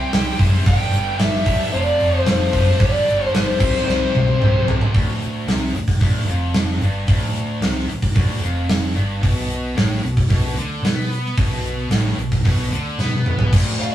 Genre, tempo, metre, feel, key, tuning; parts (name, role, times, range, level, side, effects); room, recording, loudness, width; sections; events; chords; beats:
hard rock; 112 BPM; 4/4; straight; D dorian; A4 = 440 Hz
bluesy overdriven lead guitar; melody; 0.0-4.6, 13.8-13.9 s; C5 to G5; -20 LUFS; left 1 dB; distortion
heavy high-gain guitar; riff; 0.0-13.9 s; D2 to C5; -26 LUFS; right 1 dB; distortion
scooped high-gain guitar; riff; 0.0-13.9 s; D2 to C4; -31 LUFS; left 4 dB; distortion
tight distorted guitar; riff; 0.0-4.9, 9.2-13.9 s; D2 to C4; -30 LUFS; right 2 dB; distortion
hollow-body short-scale fingered electric bass; bass; 0.0-13.9 s; D1 to B2; -22 LUFS; equal
gated 80s drum kit; drums; 0.1-13.9 s; crash cymbal, hi-hat, kick drum, snare drum, toms; -19 LUFS; equal
moderate booth ambience, RT60 0.3 s; rough rehearsal-room recording, small room ambience; -16 LUFS; side -12 dB against mid
0.0-4.9 A section; 4.9-13.5 B section
drum fill 3.9-4.9, 13.0-13.5
0.0 C; 0.7 G; 1.7 F; 2.8 G; 3.6 C; 4.9 Dm; 9.2 Asus24
0.12 | 0.66 1.20 1.73 2.27 | 2.80 3.34 3.87 4.41 | 4.94 5.48 6.01 6.55 | 7.08 7.62 8.15 8.69 | 9.22 9.76 10.30 10.84 | 11.37 11.91 12.45 12.98 | 13.52